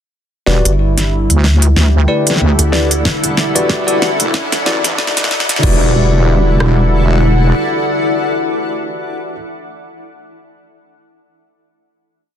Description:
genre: glitch hop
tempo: 93 BPM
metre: 4/4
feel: swing 56% on 16ths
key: E minor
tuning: A4 = 439 Hz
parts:
  - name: warm analog pad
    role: sustained chords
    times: 0.5-9.0 s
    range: D3 to G4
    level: -21 LUFS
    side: right 1 dB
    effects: wide subtle chorus, sidechain pumping
  - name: bell-like tine electric piano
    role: stabs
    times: 0.5-9.3 s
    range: E4 to D5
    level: -20 LUFS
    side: left 3 dB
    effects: sidechain pumping, ping-pong delay
  - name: wobble bass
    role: bass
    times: 0.5-7.5 s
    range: E1 to D2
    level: -12 LUFS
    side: equal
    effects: chorus, tube saturation
  - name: pop drum kit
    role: drums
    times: 0.5-5.8 s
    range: crash cymbal, hi-hat, snare drum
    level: -17 LUFS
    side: equal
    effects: none
  - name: riser and impact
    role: sound effects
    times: 2.5-9.4 s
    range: none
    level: -25 LUFS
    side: equal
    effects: none
  - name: granular cloud pad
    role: texture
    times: 1.7-9.0 s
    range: E4 to F#5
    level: -19 LUFS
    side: left 2 dB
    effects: built-in reverb, sidechain pumping
  - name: rubbery square bass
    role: bass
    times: 0.7-4.2 s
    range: E1 to D2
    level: -16 LUFS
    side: equal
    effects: none
  - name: pop drum kit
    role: drums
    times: 3.1-6.8 s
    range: kick drum, rim click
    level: -16 LUFS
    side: equal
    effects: soft clipping on snare
room: light reverb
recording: dense, heavily limited modern master, high-pass filter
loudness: -11 LUFS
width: side -9 dB against mid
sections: 0.5-5.6 build; 5.6-8.2 final chord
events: build-up 0.5-5.6; drum fill 0.5-5.6; filter sweep 0.5-5.6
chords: 0.5 Em7; 1.8 A7sus4; 3.1 Em7; 4.3 Dadd9; 5.6 Em7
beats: | 0.47 1.12 1.76 2.41 | 3.05 3.70 4.34 4.99 | 5.63 6.28 6.92 7.57

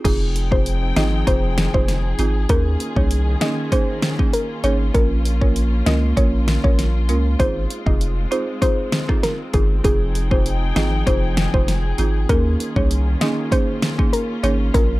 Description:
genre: dancehall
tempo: 98 BPM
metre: 4/4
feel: straight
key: F minor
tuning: A4 = 440 Hz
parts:
  - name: soft round pluck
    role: melody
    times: 0.0-14.9 s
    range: Ab4 to Eb5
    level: -25 LUFS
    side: left 1 dB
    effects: chorus
  - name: folk marimba with medium mallets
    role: accompaniment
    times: 0.0-15.0 s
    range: Bb3 to Bb4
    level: -25 LUFS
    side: right 3 dB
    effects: none
  - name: dark studio string section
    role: sustained chords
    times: 0.0-15.0 s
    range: Eb3 to G5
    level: -29 LUFS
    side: left 1 dB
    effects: sidechain pumping
  - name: punchy sub bass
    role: bass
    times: 0.0-15.0 s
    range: F1 to Eb2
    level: -20 LUFS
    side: equal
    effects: none
  - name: pop drum kit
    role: drums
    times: 0.0-14.9 s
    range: crash cymbal, hi-hat, kick drum, rim click, snare drum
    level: -20 LUFS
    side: equal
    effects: none
room: digital ambience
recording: dark, warm production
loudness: -16 LUFS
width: side -19 dB against mid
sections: 0.0-15.0 A section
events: none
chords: 0.0 Fm7; 2.5 Eb7sus4; 4.9 Bbm; 7.4 Fm7; 12.3 Eb7sus4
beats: | 0.05 0.66 1.27 1.89 | 2.50 3.11 3.72 4.33 | 4.95 5.56 6.17 6.78 | 7.40 8.01 8.62 9.23 | 9.85 10.46 11.07 11.68 | 12.29 12.91 13.52 14.13 | 14.74

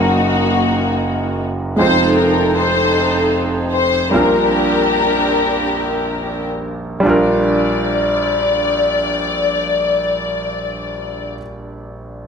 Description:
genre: gospel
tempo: 35-54 BPM (dotted quarters)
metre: 6/8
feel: straight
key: Bb major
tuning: A4 = 439 Hz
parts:
  - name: warm studio string section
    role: melody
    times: 0.0-11.3 s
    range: Bb3 to D5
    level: -17 LUFS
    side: left 2 dB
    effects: none
  - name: bright concert grand piano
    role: accompaniment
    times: 0.0-12.3 s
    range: F1 to F5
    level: -18 LUFS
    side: right 2 dB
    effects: none
room: wet recital hall reverb, RT60 1.4 s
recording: none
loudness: -14 LUFS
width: side -6 dB against mid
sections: 0.0-7.0 A section; 7.0-10.5 B section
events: slowing down 1.8-7.0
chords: 0.0 Ebmadd9/Gb; 1.8 F7; 4.1 Bb6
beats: 0.67 | 1.78 2.92 | 4.12 5.47 | 7.04 8.77

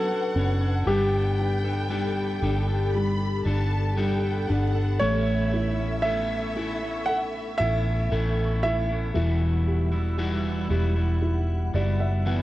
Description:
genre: pop ballad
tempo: 58 BPM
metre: 4/4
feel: straight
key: unclear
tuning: A4 = 443 Hz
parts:
  - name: clear concert grand piano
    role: melody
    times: 0.0-10.1 s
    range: G4 to F#5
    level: -29 LUFS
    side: right 1 dB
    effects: none
  - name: dark studio violin section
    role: second line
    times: 0.0-9.2 s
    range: E5 to B5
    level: -35 LUFS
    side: equal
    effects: none
  - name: felt-muted upright piano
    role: accompaniment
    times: 0.0-12.4 s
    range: E3 to F#5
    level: -31 LUFS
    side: equal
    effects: none
  - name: glassy FM pad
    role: sustained chords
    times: 0.1-12.4 s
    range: G3 to E6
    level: -34 LUFS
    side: left 1 dB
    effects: ensemble chorus, built-in reverb, phaser
  - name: electric guitar at the edge of break-up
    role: arpeggios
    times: 0.0-12.4 s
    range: E2 to C#5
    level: -32 LUFS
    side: left 2 dB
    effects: none
  - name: vintage muted fingered electric bass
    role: bass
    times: 0.0-12.4 s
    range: E1 to A1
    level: -25 LUFS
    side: equal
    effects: none
room: light reverb, studio reverb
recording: worn, warbling old tape, cassette tape, warbly pitch drift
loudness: -22 LUFS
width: side -16 dB against mid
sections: 0.0-12.4 A section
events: felt piano fill 11.2-12.4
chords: 0.0 Bmadd9/F#; 0.9 Gadd9; 5.0 Aadd9; 9.2 Emadd9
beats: | 0.87 1.91 2.94 3.98 | 5.01 6.05 7.08 8.12 | 9.15 10.18 11.22 12.25

